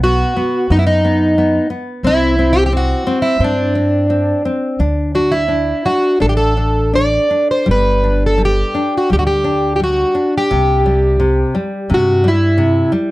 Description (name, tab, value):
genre	fado-style ballad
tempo	85 BPM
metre	4/4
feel	uneven beats, rubato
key	unclear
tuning	A4 = 440 Hz
part	fingerpicked plugged-in twelve-string acoustic guitar	melody	0.0-12.9 s	D4 to D5	-15 LUFS	equal	none
part	nylon-string guitar	accompaniment	0.0-13.1 s	C3 to D4	-20 LUFS	left 2 dB	none
part	upright bass	bass	0.0-12.8 s	G1 to G2	-17 LUFS	equal	none
room	light reverb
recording	dry, close 1970s-style studio recording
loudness	-12 LUFS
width	side -18 dB against mid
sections	0.0-13.1 A section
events	none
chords	0.0 B; 2.0 Csus2; 4.8 D5; 7.7 G5; 10.5 C